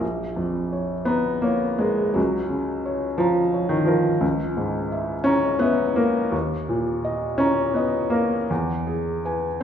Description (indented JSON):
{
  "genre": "classical, romantic nocturne for solo piano",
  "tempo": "51-59 BPM (dotted quarters)",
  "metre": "12/8",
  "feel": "rubato",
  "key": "unclear",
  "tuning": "A4 = 440 Hz",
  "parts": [
    { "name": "felt-muted upright piano", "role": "solo", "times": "0.0-9.6 s", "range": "Bb1 to Bb5", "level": "-20 LUFS", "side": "equal", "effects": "none" }
  ],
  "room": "wet recital hall reverb, RT60 1.5 s",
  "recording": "heard from further back in the room",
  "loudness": "-20 LUFS",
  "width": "side -8 dB against mid",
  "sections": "0.0-9.6 A section",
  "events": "none",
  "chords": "0.0 Bbm; 2.2 Bbm/Db; 4.2 A#m7b5/C#; 6.3 D#5; 8.5 E"
}